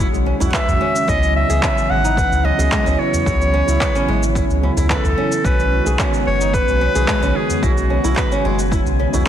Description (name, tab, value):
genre	organic downtempo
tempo	110 BPM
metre	4/4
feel	straight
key	C# minor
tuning	A4 = 444 Hz
part	clear clarinet	melody	0.0-8.4 s	F#4 to F#5	-21 LUFS	equal	tape echo
part	tine electric piano	accompaniment	0.0-9.3 s	C#3 to F#4	-24 LUFS	right 3 dB	medium tremolo, sidechain pumping, tape echo
part	warbly tape-like pad	sustained chords	0.0-9.3 s	C#3 to G#5	-26 LUFS	equal	chorus, built-in reverb, sidechain pumping
part	flamenco guitar	arpeggios	0.0-9.3 s	G#3 to B4	-24 LUFS	right 1 dB	tape echo
part	warm sub bass	bass	0.0-9.2 s	F#1 to C#2	-19 LUFS	equal	sidechain pumping
part	electronic shaker and handclaps	drums	0.0-9.2 s	none	-25 LUFS	equal	overdrive
part	udu	percussion	0.4-9.2 s	none	-25 LUFS	right 1 dB	none
part	electronic kick drum	drums	0.5-9.3 s	none	-22 LUFS	equal	overdrive
room	light reverb, small room reverb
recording	dense, heavily limited modern master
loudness	-14 LUFS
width	side -10 dB against mid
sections	0.0-9.3 A section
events	none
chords	0.0 Bsus2; 1.1 C#m; 5.4 Bsus2